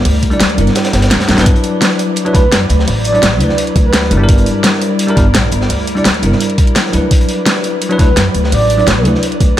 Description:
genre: liquid drum and bass.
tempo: 170 BPM.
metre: 4/4.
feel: straight.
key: D major.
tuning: A4 = 440 Hz.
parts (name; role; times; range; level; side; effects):
glassy FM pad; sustained chords; 0.0-9.6 s; F#3 to D5; -20 LUFS; equal; ensemble chorus, built-in reverb.
upright bass; bass; 0.0-9.6 s; G1 to F#2; -14 LUFS; equal; none.
crunchy breakbeat drum kit; drums; 0.1-9.6 s; hi-hat, snare drum; -22 LUFS; equal; high-pass filter on hats, small room ambience, high-pass filter on snare, high-pass filter on room.
pop drum kit; drums; 0.1-9.5 s; hi-hat, snare drum; -15 LUFS; equal; small room ambience.
electronic kick drum; drums; 0.2-9.5 s; none; -11 LUFS; equal; small room ambience.
bell-like tine electric piano; accompaniment; 0.3-9.6 s; F#3 to D5; -17 LUFS; equal; digital delay.
breathy flute-like synth lead; melody; 2.3-4.1, 8.0-9.0 s; B4 to D5; -17 LUFS; right 2 dB; analog chorus, cassette tape, digital delay.
room: light reverb.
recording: none.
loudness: -9 LUFS.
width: side -12 dB against mid.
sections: 0.0-9.6 A section.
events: kick drops out 0.8-1.5; drum fill 1.2.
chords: 0.0 Gm6; 1.5 D69; 4.1 Gm6; 7.1 D69.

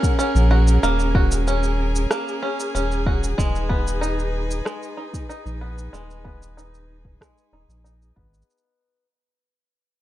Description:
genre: folktronica.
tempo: 94 BPM.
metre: 4/4.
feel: straight.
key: unclear.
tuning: A4 = 439 Hz.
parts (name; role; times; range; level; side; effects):
rich string quartet; sustained chords; 0.0-8.4 s; Db4 to Ab5; -28 LUFS; right 2 dB; plate reverb.
bluegrass banjo; arpeggios; 0.0-9.0 s; Ab3 to Gb4; -26 LUFS; equal; low-pass filter, digital delay, plate reverb.
electronic cabasa and rim click; drums; 0.0-8.6 s; none; -29 LUFS; right 1 dB; none.
electronic kick drum; drums; 0.0-8.3 s; none; -21 LUFS; equal; none.
warm sub bass; bass; 0.4-8.4 s; Eb1 to Bb1; -21 LUFS; equal; none.
room: light reverb.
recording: none.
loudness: -18 LUFS.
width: side -14 dB against mid.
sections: 0.0-8.5 A section.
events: fade-out 0.0-8.5; filter sweep on five-string banjo 0.0-8.5.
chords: 0.0 Ebm7; 3.4 Abm/Eb.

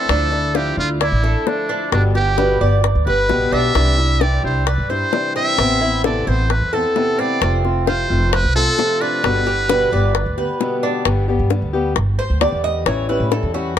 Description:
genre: latin, Cuban son and guajira.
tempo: 131 BPM.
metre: 4/4.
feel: straight.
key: unclear.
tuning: A4 = 439 Hz.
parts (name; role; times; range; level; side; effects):
trumpet with metal mute; melody; 0.0-10.6 s; D4 to E5; -21 LUFS; equal; none.
fingerpicked swing-style acoustic guitar; accompaniment; 0.0-13.8 s; B2 to G4; -23 LUFS; left 4 dB; none.
Cuban tres; arpeggios; 0.0-13.8 s; C4 to Eb5; -22 LUFS; right 3 dB; none.
upright bass; bass; 0.1-13.8 s; F1 to A2; -19 LUFS; right 1 dB; none.
bongos; percussion; 0.1-13.8 s; none; -23 LUFS; left 9 dB; none.
room: light reverb.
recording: dark, warm production.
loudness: -15 LUFS.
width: side -10 dB against mid.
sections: 0.0-11.1 A section; 11.1-13.8 B section.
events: Cuban tres solo 11.1-13.8.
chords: 0.1 Dmadd9; 1.9 G; 3.8 Cadd9; 5.6 Amadd9; 7.4 F; 9.2 G; 12.9 A7.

